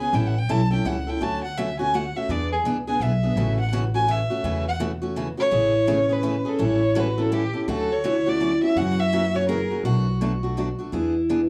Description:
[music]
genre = acoustic string swing (jazz manouche)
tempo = 167 BPM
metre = 3/4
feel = swing 61% on 8ths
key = A major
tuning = A4 = 441 Hz
[part]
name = warm violin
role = melody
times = 0.0-9.8 s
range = G4 to A5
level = -27 LUFS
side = equal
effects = none
[part]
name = picked steel-string acoustic guitar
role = accompaniment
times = 0.0-11.4 s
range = B2 to A4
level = -30 LUFS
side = equal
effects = none
[part]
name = upright bass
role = bass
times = 0.1-11.5 s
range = A1 to F#2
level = -28 LUFS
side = equal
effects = none
[part]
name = picked steel-string acoustic guitar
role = second line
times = 5.5-11.5 s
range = C#4 to G#4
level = -28 LUFS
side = equal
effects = none
[sound]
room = light reverb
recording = small room reverb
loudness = -23 LUFS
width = mono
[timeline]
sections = 0.0-5.5 A section; 5.5-11.5 B section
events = violin solo 0.0-5.5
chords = 0.1 A7; 1.2 Dmaj7; 2.3 E7; 3.4 A6; 5.5 Amaj7; 6.6 A7; 7.7 Dmaj7; 8.8 F#7; 9.8 Bm7; 10.9 E7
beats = | 0.13 0.49 0.85 | 1.21 1.57 1.93 | 2.29 2.64 3.00 | 3.36 3.72 4.08 | 4.44 4.80 5.16 | 5.52 5.88 6.24 | 6.60 6.96 7.32 | 7.68 8.04 8.40 | 8.76 9.12 9.48 | 9.84 10.20 10.56 | 10.92 11.28

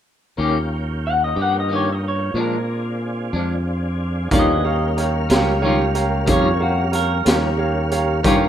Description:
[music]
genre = slow blues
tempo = 61 BPM (dotted quarters)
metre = 12/8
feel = straight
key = Eb mixolydian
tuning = A4 = 439 Hz
[part]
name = clean electric guitar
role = accompaniment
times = 0.4-8.4 s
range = Bb2 to G4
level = -22 LUFS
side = left 3 dB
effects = tremolo
[part]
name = tonewheel organ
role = sustained chords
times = 0.4-8.5 s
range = D3 to F5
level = -27 LUFS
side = right 1 dB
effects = chorus vibrato, slow rotary speaker
[part]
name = modern bright fingered electric bass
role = bass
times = 0.4-8.5 s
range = Db2 to Bb2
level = -22 LUFS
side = equal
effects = none
[part]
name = electric guitar through a small old amp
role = melody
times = 1.1-8.2 s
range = Gb4 to Gb5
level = -24 LUFS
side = left 1 dB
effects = none
[part]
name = clear grand piano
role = accompaniment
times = 4.3-8.5 s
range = G4 to F5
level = -22 LUFS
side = right 3 dB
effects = none
[part]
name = raw garage drum kit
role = drums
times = 4.3-8.4 s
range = hi-hat, kick drum, snare drum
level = -20 LUFS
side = equal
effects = none
[sound]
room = light reverb, small room ambience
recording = rough home demo mix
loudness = -17 LUFS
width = side -10 dB against mid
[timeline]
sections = 0.4-4.3 A section; 4.3-8.5 B section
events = none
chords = 0.4 Eb7; 2.3 Bb7; 4.3 Eb9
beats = | 0.37 1.36 2.34 3.33 | 4.31 5.30 6.28 7.26 | 8.24

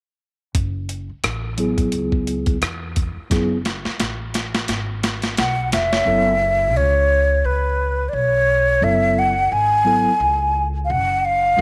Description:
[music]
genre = hip hop, jazz-hop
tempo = 87 BPM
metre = 4/4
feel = swing 57% on 16ths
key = F# minor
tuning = A4 = 443 Hz
[part]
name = boom bap sampler-style drum kit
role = drums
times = 0.5-6.1 s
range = hi-hat, kick drum, rim click, snare drum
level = -25 LUFS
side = equal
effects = none
[part]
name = upright bass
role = bass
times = 0.6-11.6 s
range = E#1 to E2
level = -27 LUFS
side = equal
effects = none
[part]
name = mellow tine electric piano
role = accompaniment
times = 1.6-11.6 s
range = F#3 to F#5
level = -26 LUFS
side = equal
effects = low-pass filter
[part]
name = breathy concert flute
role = melody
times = 5.4-11.6 s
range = B4 to G#5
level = -19 LUFS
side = equal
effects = none
[sound]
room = moderate spring reverb, RT60 2.5 s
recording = none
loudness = -19 LUFS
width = mono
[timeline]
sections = 0.5-6.1 A section; 6.1-11.6 B section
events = filter sweep on tine electric piano 0.5-6.1; drum fill 3.3-6.1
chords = 0.5 F#m9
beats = | 0.55 1.24 1.93 2.62 | 3.31 4.00 4.69 5.38 | 6.07 6.75 7.45 8.13 | 8.82 9.51 10.20 10.89 | 11.58

